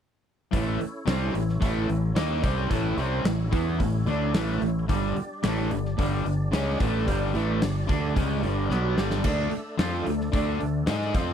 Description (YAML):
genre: classic rock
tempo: 110 BPM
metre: 4/4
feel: straight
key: A mixolydian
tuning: A4 = 440 Hz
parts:
  - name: tonewheel organ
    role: sustained chords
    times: 0.5-11.3 s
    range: G3 to D#5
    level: -38 LUFS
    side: equal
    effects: slow rotary speaker, overdrive, chorus vibrato
  - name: distorted electric guitar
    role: riff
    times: 0.5-11.3 s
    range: G2 to G#4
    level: -30 LUFS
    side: left 11 dB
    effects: distortion
  - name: overdriven semi-hollow guitar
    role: riff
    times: 0.5-11.3 s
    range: G2 to G#4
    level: -30 LUFS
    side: right 10 dB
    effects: phaser
  - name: growling fingered electric bass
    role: bass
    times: 0.5-11.3 s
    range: G1 to G#2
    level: -28 LUFS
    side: equal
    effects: overdrive
  - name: gated 80s drum kit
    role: drums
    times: 0.5-11.3 s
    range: crash cymbal, hi-hat, kick drum, snare drum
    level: -29 LUFS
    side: equal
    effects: none
room: little or no reverb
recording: none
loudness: -23 LUFS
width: side -8 dB against mid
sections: 0.5-11.3 A section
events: drum fill 8.7-9.2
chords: 0.5 A; 4.9 G5; 9.2 D5